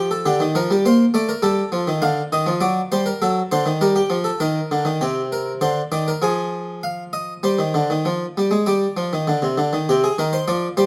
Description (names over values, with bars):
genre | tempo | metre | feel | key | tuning
classical, baroque-style two-part invention for harpsichord | 100 BPM | 4/4 | straight | G minor, C minor from 5.0 s | A4 = 440 Hz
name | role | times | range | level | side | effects
harpsichord | solo | 0.0-10.9 s | C3 to F5 | -20 LUFS | equal | none
room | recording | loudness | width
light reverb | close, detailed microphones | -20 LUFS | mono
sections
0.0-5.0 A section; 5.0-9.9 B section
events
none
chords
0.2 Gm/D; 1.4 Dmadd11; 2.6 D/F#; 3.8 Gm; 5.0 Cm; 6.2 Fm; 7.4 Gsus4; 8.7 G5; 9.9 Cm